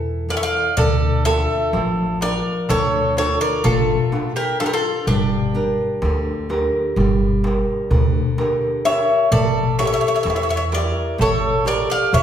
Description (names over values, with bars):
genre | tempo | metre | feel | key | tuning
greek folk, Greek bouzouki band | 127 BPM (eighths) | 9/8 | straight | D harmonic minor | A4 = 445 Hz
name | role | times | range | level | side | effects
Greek bouzouki | melody | 0.0-12.2 s | G4 to F5 | -22 LUFS | left 2 dB | none
mandolin | second line | 0.0-12.2 s | D4 to D5 | -24 LUFS | right 3 dB | none
nylon-string guitar | accompaniment | 0.0-12.2 s | D3 to E5 | -23 LUFS | left 1 dB | none
upright bass | bass | 0.0-12.2 s | G1 to E2 | -23 LUFS | right 1 dB | none
darbuka | percussion | 0.3-12.2 s | none | -24 LUFS | left 1 dB | none
room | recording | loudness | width
wet recital hall reverb, RT60 1.5 s | recorded in a church or concert hall | -16 LUFS | side -9 dB against mid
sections
0.8-12.2 A section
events
none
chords
0.0 A5; 0.8 Dm; 5.1 Gm; 9.3 A7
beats
0.30 | 0.78 1.26 1.74 2.21 2.69 3.17 3.64 4.12 4.59 | 5.07 5.54 6.02 6.49 6.96 7.43 7.91 8.38 8.85 | 9.32 9.79 10.26 10.73 11.20 11.66 12.13